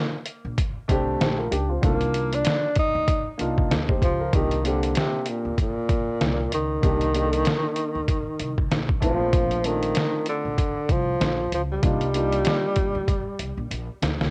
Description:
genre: hip hop, jazz-hop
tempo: 96 BPM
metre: 4/4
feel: swing 58% on 16ths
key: C dorian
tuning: A4 = 440 Hz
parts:
  - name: breathy tenor saxophone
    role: melody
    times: 0.0-13.7 s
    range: Bb2 to Eb4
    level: -28 LUFS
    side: equal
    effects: analog delay
  - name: dark upright piano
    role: accompaniment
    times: 0.0-13.0 s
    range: Eb3 to Eb5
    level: -30 LUFS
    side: equal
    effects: none
  - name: trip hop sampler-style drum kit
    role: drums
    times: 0.3-14.3 s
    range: hi-hat, kick drum, snare drum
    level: -26 LUFS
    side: equal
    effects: none
  - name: upright bass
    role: bass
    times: 0.4-14.3 s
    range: Bb1 to D2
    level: -31 LUFS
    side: equal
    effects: tube saturation
room: light reverb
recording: home recording on cassette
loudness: -24 LUFS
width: mono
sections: 0.0-4.3 A section; 4.3-14.3 B section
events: tenor saxophone solo 0.0-4.3; drum fill 13.1-14.3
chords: 0.0 Bbmaj9; 1.8 Cm11; 4.3 Cm9; 9.0 Bbmaj9; 11.8 Cm11

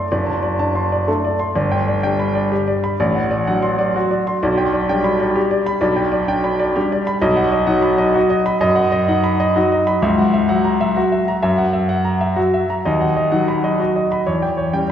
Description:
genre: classical, piano waltz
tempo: 127 BPM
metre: 3/4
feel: rubato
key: G major, B major from 7.2 s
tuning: A4 = 443 Hz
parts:
  - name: clear grand piano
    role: solo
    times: 0.0-14.9 s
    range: F#1 to C6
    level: -15 LUFS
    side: equal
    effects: none
room: wet concert hall reverb, RT60 1.9 s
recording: heard from further back in the room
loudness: -15 LUFS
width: side -9 dB against mid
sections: 0.0-14.9 A section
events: none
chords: 0.0 D7/F#; 1.6 G; 3.0 D7/A; 4.4 G/B; 7.2 B; 10.0 F#7/C#; 12.9 B/D#; 14.3 C#dim/E

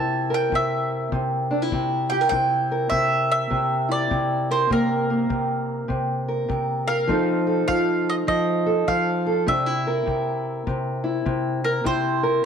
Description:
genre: acoustic country blues, solo or duo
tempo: 101 BPM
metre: 4/4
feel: swing 64% on 8ths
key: C mixolydian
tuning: A4 = 440 Hz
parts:
  - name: mandolin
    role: melody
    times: 0.0-12.4 s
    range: Bb4 to A5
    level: -24 LUFS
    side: right 2 dB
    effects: none
  - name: fingerpicked steel-string acoustic guitar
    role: accompaniment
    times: 0.0-12.5 s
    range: C3 to Bb4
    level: -22 LUFS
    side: equal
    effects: none
  - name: kick drum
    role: drums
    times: 0.5-12.0 s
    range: none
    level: -32 LUFS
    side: left 4 dB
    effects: none
room: light reverb, studio reverb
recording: 1960s-style stereo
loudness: -20 LUFS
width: side -7 dB against mid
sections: 0.0-12.5 A section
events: none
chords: 0.0 C7; 7.1 F7; 9.5 C7

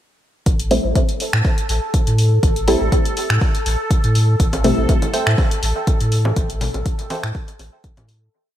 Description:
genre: dub techno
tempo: 122 BPM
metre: 4/4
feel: swing 54% on 16ths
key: A minor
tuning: A4 = 440 Hz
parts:
  - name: warm sub bass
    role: bass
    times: 0.5-8.3 s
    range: A1 to A2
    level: -18 LUFS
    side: equal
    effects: sidechain pumping
  - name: deep house drum kit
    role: drums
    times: 0.5-8.2 s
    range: finger snaps, hi-hat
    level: -25 LUFS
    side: left 1 dB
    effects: dub echo
  - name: electronic kick drum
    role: drums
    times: 0.5-7.9 s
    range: none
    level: -18 LUFS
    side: equal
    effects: none
  - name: bubbling stepped-filter texture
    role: texture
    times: 0.5-8.3 s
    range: A4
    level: -27 LUFS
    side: equal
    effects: chorus, built-in reverb, sidechain pumping
  - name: filtered dub chord stab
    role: stabs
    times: 0.7-4.8 s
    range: G3 to E4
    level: -20 LUFS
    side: equal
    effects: chorus, phaser, vintage 12-bit sampler grit, sidechain pumping, dub echo
  - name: bongos and congas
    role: percussion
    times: 4.5-8.1 s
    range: none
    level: -28 LUFS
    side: left 2 dB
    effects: overdrive, sidechain pumping on perc, dub echo
  - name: wavetable chord stab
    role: riff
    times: 5.1-7.2 s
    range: A4 to G5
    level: -26 LUFS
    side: right 3 dB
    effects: sidechain pumping, dub echo
room: light reverb, digital ambience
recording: none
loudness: -15 LUFS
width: side -12 dB against mid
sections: 0.5-8.3 groove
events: fade-out 5.7-8.3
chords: 0.5 Am7

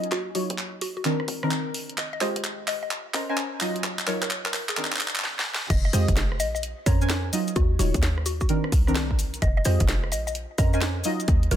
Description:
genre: UK garage, two-step garage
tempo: 129 BPM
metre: 4/4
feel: swing 65% on 16ths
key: F dorian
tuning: A4 = 441 Hz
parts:
  - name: deep mellow chord stab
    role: stabs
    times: 0.0-11.6 s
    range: Eb3 to Bb5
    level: -29 LUFS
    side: equal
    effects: chorus, dub echo
  - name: house drum kit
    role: drums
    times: 0.0-11.6 s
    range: crash cymbal, handclaps, hi-hat, rim click, snare drum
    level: -29 LUFS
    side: equal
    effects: high-pass filter on snare, high-pass filter on hats, high-pass filter on cymbals, high-pass filter on room
  - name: mallet-like synth pluck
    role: melody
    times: 0.1-11.6 s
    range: Gb4 to Eb5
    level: -33 LUFS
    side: equal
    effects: chorus, phaser, dub echo
  - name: short 808-style bass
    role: bass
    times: 0.1-11.6 s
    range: Eb1 to F2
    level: -25 LUFS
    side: equal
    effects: high-pass filter
  - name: electronic kick drum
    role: drums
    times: 5.7-11.4 s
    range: none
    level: -24 LUFS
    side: equal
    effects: none
  - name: cabasa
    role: percussion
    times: 5.7-11.6 s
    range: none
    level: -34 LUFS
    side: left 3 dB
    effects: none
room: light reverb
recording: high-pass filter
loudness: -23 LUFS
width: side -11 dB against mid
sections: 0.0-5.7 A section; 5.7-11.6 B section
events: build-up 0.0-5.7; drum fill 0.0-5.2, 5.2-5.7; filter sweep 0.0-5.7; break 5.2-5.7; drop 5.7-11.6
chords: 0.0 Ebm9; 1.0 Cm9; 2.0 Fm9; 2.7 Bbm9; 3.6 Ebm9; 4.8 Cm9; 5.7 Fm9; 6.4 Bbm9; 7.3 Ebm9; 8.5 Cm9; 9.4 Fm9; 10.1 Bbm9; 11.0 Ebmadd9

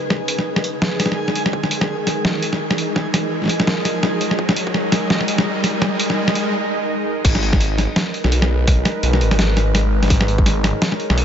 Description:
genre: half-time drum and bass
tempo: 168 BPM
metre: 4/4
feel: swing 57% on 16ths, half-time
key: G# minor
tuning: A4 = 438 Hz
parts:
  - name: bowed-like drone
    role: sustained chords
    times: 0.0-11.2 s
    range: G#3 to D#5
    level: -24 LUFS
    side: equal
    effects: built-in reverb, vintage 12-bit sampler grit, sidechain pumping
  - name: riser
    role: sound effects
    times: 0.0-6.5 s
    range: none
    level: -26 LUFS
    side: equal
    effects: none
  - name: backwards swelling texture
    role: texture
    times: 0.0-6.5 s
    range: G#4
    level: -29 LUFS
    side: right 1 dB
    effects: built-in reverb
  - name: boom bap sampler-style drum kit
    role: drums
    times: 0.1-11.2 s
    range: crash cymbal, hi-hat, snare drum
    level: -20 LUFS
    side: equal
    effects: none
  - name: electronic kick drum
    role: drums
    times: 0.1-10.4 s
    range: none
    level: -18 LUFS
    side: equal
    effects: high-pass filter on kick, high-pass filter on room
  - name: phased detuned saw bass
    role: bass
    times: 7.2-11.2 s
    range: G#1 to B1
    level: -18 LUFS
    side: equal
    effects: phaser, tube saturation
room: light reverb, digital ambience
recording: nothing above 7.8 kHz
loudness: -16 LUFS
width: side -8 dB against mid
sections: 0.0-7.2 A section; 7.2-11.2 B section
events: build-up 0.0-7.2; riser 0.0-6.5; filter sweep on synth drone 0.0-7.2; break 6.5-7.2; drop 7.2-11.2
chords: 0.0 G#madd9

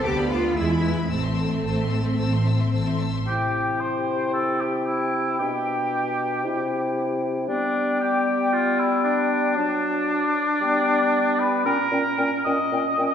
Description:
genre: classical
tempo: 114 BPM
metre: 4/4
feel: rubato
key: A minor, C major from 3.3 s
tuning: A4 = 440 Hz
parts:
  - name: warm symphonic violin section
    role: melody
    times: 0.0-3.3 s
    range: B5 to E6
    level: -36 LUFS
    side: left 6 dB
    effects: none
  - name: warm symphonic violin section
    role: second line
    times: 0.0-3.3 s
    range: B4 to C6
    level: -34 LUFS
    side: left 4 dB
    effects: none
  - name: warm symphonic viola section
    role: accompaniment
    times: 0.0-3.0 s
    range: G#3 to B3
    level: -29 LUFS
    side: right 1 dB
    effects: none
  - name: rich symphonic cello section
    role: bass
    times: 0.0-3.0 s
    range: C4 to G4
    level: -27 LUFS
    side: right 2 dB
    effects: none
  - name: rich symphonic double bass section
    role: bass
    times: 0.0-3.2 s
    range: A1 to E2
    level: -24 LUFS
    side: equal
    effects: none
  - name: dark clarinet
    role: second line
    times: 3.3-13.1 s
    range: B3 to E4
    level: -28 LUFS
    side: equal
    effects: none
  - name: hollow concert flute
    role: second line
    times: 3.3-13.0 s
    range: G5 to A5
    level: -30 LUFS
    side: left 1 dB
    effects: none
  - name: warm oboe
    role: second line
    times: 3.3-13.1 s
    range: D4 to Eb5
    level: -23 LUFS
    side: equal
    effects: none
  - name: mellow bassoon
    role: accompaniment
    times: 3.3-13.1 s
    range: Bb2 to G3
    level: -27 LUFS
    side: left 2 dB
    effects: none
room: wet concert hall reverb, RT60 1.7 s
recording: heard from further back in the room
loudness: -20 LUFS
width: side -8 dB against mid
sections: 0.0-3.3 A section; 3.3-13.1 B section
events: none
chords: 0.0 Bm7b5/D; 0.6 E; 1.1 Am; 3.3 C; 5.4 G/B; 6.4 C; 7.5 G; 9.6 D/F#; 10.6 G; 11.7 Gdim/Bb

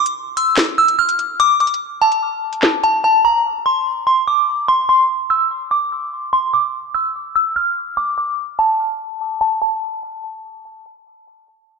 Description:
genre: hip hop, drill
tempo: 146 BPM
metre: 4/4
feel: half-time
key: A phrygian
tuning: A4 = 439 Hz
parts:
  - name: delicate synth tine bell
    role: melody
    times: 0.0-10.8 s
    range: A5 to F6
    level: -15 LUFS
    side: equal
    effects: chorus, phaser, ping-pong delay
  - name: drill drum kit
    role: drums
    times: 0.1-2.9 s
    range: handclaps, hi-hat, snare drum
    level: -18 LUFS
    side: equal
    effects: none
room: moderate lush hall reverb, RT60 1.9 s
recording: low-pass filter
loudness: -15 LUFS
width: side -4 dB against mid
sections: 0.0-9.6 A section; 9.6-11.8 B section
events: break 0.0-3.0; filter sweep 0.0-9.6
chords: none

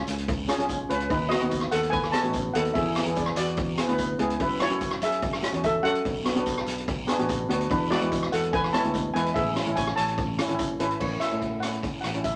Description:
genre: calypso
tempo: 145 BPM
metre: 4/4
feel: straight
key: A major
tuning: A4 = 444 Hz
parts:
  - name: steel pan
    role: melody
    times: 0.0-12.4 s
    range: D4 to A5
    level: -30 LUFS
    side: equal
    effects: none
  - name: steel pan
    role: accompaniment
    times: 0.0-12.3 s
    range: G#3 to B4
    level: -31 LUFS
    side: equal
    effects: none
  - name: overdriven fingered electric bass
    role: bass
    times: 0.1-12.4 s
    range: F#1 to A2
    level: -34 LUFS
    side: equal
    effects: none
  - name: street-band drum kit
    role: drums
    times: 0.1-12.3 s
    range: crash cymbal, hi-hat, kick drum, rim click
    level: -34 LUFS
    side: equal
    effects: none
  - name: guiro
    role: percussion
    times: 0.1-12.3 s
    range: none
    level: -41 LUFS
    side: equal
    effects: none
room: wet small room reverb, RT60 0.5 s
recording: none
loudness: -26 LUFS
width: mono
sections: 0.0-11.0 A section; 11.0-12.4 B section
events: none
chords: 0.0 C#7; 1.1 B7/D#; 2.8 E7; 4.4 F#m7; 6.1 Bm7; 7.7 E7; 9.4 Amaj7; 11.0 A6

